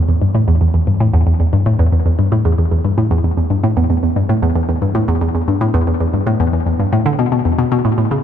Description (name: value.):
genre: ambient.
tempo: 114 BPM.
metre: 4/4.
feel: straight.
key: E minor.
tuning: A4 = 440 Hz.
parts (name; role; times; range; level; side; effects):
hollow square pluck; solo; 0.1-8.2 s; E2 to D3; -13 LUFS; equal; chorus, phaser, ping-pong delay.
room: moderate huge ambient reverb, RT60 7.6 s.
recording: none.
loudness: -13 LUFS.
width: side -9 dB against mid.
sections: 0.0-8.2 A section.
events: none.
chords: none.